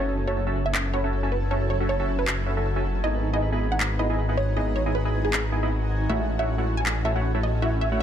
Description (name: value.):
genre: future bass.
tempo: 157 BPM.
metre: 4/4.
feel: swing 55% on 16ths, half-time.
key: E major.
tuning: A4 = 441 Hz.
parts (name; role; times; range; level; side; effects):
wide unison pluck; melody; 0.0-8.0 s; G#4 to G#5; -30 LUFS; right 2 dB; dub echo.
shimmering ambient pad; sustained chords; 0.0-8.0 s; F#3 to D#5; -37 LUFS; equal; chorus, built-in reverb.
concert harp; arpeggios; 0.0-8.0 s; C#4 to G#5; -35 LUFS; right 2 dB; vintage 12-bit sampler grit, ping-pong delay.
supersaw stab; riff; 0.0-8.0 s; A3 to B5; -29 LUFS; right 1 dB; low-pass filter.
wide detuned saw bass; bass; 0.0-8.0 s; F#1 to A1; -26 LUFS; equal; chorus.
electronic handclaps; drums; 0.7-6.9 s; none; -28 LUFS; left 1 dB; overdrive.
room: light reverb.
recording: none.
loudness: -22 LUFS.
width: side -9 dB against mid.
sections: 0.0-8.0 A section.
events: none.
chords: 0.0 F#m7; 3.0 Emaj7/G#; 6.1 A6.